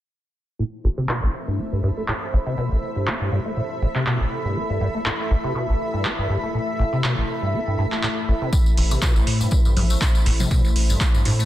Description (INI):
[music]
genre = acid house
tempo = 121 BPM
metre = 4/4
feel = swing 55% on 16ths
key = A minor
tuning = A4 = 442 Hz
[part]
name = dark analog pad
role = sustained chords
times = 0.9-11.5 s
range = A3 to E5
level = -31 LUFS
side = left 1 dB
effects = chorus, sidechain pumping
[part]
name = liquid acid bass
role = riff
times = 0.6-11.5 s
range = A1 to C4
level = -23 LUFS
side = equal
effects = phaser, tube saturation, lush chorus, sidechain pumping, tape echo
[part]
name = granular cloud pad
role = texture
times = 1.3-11.5 s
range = A4 to B5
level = -31 LUFS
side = right 1 dB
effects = built-in reverb, sidechain pumping
[part]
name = electro analog drum machine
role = drums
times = 1.1-11.4 s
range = congas, handclaps, hi-hat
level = -27 LUFS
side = equal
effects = overdrive, low-pass filter on snare, low-pass filter on hats, low-pass filter on perc, low-pass filter on room
[part]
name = electronic kick drum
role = drums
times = 8.5-11.1 s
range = none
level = -19 LUFS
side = equal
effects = none
[part]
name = tambourine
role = percussion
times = 8.5-11.5 s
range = none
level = -32 LUFS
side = left 4 dB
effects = none
[part]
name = saturated sub bass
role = bass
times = 8.8-11.4 s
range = A1 to A2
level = -20 LUFS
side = equal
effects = sidechain pumping
[sound]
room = light reverb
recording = dense, heavily limited modern master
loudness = -19 LUFS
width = side -14 dB against mid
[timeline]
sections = 0.6-11.5 A section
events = filter sweep on drum 0.6-11.5; filter sweep on acid bass 0.6-11.5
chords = 0.6 Am